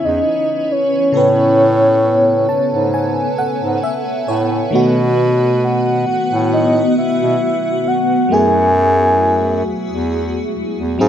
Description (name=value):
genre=R&B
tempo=67 BPM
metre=4/4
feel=straight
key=F# dorian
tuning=A4 = 442 Hz
part: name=soft octave-layered synth lead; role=melody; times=0.0-10.1 s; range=C#5 to G#5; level=-16 LUFS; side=left 1 dB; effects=chorus, tremolo, tape echo
part: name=FM electric piano with soft pad layer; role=accompaniment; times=0.0-11.1 s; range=C#3 to A5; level=-21 LUFS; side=equal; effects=chorus
part: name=granular cloud pad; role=sustained chords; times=0.0-11.1 s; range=G#3 to F#5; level=-20 LUFS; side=equal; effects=built-in reverb
part: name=clear bass clarinet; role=bass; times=0.0-11.1 s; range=E2 to B2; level=-17 LUFS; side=right 1 dB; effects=none
room=light reverb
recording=rough home demo mix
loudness=-13 LUFS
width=side -9 dB against mid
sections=0.0-11.1 A section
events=FM electric piano fill 2.0-4.7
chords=0.0 C#m9; 1.1 Amaj9; 4.7 B7; 8.3 F#m9